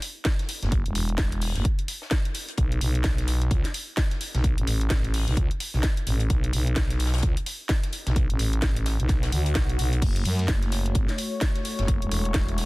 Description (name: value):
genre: bass house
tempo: 129 BPM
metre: 4/4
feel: swing 59% on 16ths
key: F# minor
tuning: A4 = 439 Hz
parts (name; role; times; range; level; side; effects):
- compact cocktail drum kit; drums; 0.0-12.7 s; hi-hat, snare drum; -40 LUFS; left 3 dB; sidechain pumping on hats, high-pass filter on hats, high-pass filter on snare, high-pass filter on room
- house drum kit; drums; 0.0-12.7 s; crash cymbal, hi-hat, snare drum; -31 LUFS; equal; none
- electronic kick drum; drums; 0.3-12.5 s; none; -25 LUFS; equal; none
- growling FM bass; bass; 0.6-12.7 s; E1 to F#2; -24 LUFS; equal; overdrive, sidechain pumping
- swell; sound effects; 9.2-10.0 s; none; -38 LUFS; right 1 dB; none
- sweeping resonant pad; sustained chords; 10.0-12.7 s; A3 to C#5; -33 LUFS; left 2 dB; chorus, sidechain pumping
room: little or no reverb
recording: dense, heavily limited modern master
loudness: -22 LUFS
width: side -22 dB against mid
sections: 0.0-12.7 A section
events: swell 9.2-10.0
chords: 0.0 Esus2; 2.6 N.C.; 10.0 F#m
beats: 0.26 | 0.72 1.19 1.65 2.12 | 2.58 3.04 3.51 3.98 | 4.44 4.91 5.37 5.84 | 6.30 6.77 7.23 7.70 | 8.16 8.63 9.09 9.56 | 10.02 10.49 10.95 11.42 | 11.88 12.35